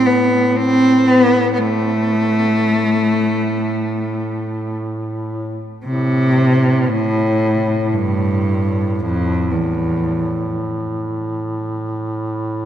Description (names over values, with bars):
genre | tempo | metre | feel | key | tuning
caucasian folk, Caucasian lament | free time | none | none | A minor | A4 = 440 Hz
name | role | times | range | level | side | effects
rich cello | melody | 0.0-10.5 s | E2 to C4 | -15 LUFS | equal | none
warm duduk | drone | 0.0-12.7 s | A2 | -22 LUFS | equal | none
room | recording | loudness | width
wet cathedral reverb, RT60 5.8 s | minimal, uncompressed stereo recording | -15 LUFS | side -10 dB against mid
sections
0.0-5.8 A section; 5.8-12.7 B section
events
none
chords
none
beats
free time